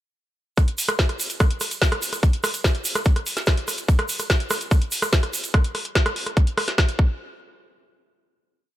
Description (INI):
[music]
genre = trance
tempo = 145 BPM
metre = 4/4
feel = straight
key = none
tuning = none
[part]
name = drum and bass drum kit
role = drums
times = 0.6-7.0 s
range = hi-hat, rim click, snare drum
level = -24 LUFS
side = equal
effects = none
[part]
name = electronic kick drum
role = drums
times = 0.6-7.1 s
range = none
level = -18 LUFS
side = equal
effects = none
[part]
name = egg shaker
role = percussion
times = 0.6-5.5 s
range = none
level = -29 LUFS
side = right 4 dB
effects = none
[sound]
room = digital ambience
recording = none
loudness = -19 LUFS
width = side -14 dB against mid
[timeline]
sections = 0.6-7.2 drop; 7.2-8.8 final hit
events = drop 0.6-7.2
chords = none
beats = | 0.57 0.99 1.40 1.82 | 2.23 2.64 3.06 3.47 | 3.88 4.30 4.71 5.13 | 5.54 5.95 6.37 6.78